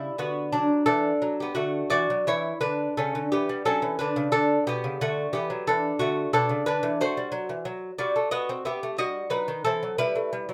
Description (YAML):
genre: classical, baroque-style dance for lute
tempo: 89 BPM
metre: 4/4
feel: rubato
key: E minor from 7.0 s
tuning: A4 = 440 Hz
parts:
  - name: lute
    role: solo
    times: 0.0-10.5 s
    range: B2 to E5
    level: -26 LUFS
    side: equal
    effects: none
room: moderate small room reverb, RT60 0.5 s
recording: close, detailed microphones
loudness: -26 LUFS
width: mono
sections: 0.0-10.5 A section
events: none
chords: 0.0 Bm; 1.6 D; 3.0 Gadd9(#11)/C#; 4.3 D; 7.0 F#dim; 8.3 B; 9.7 Em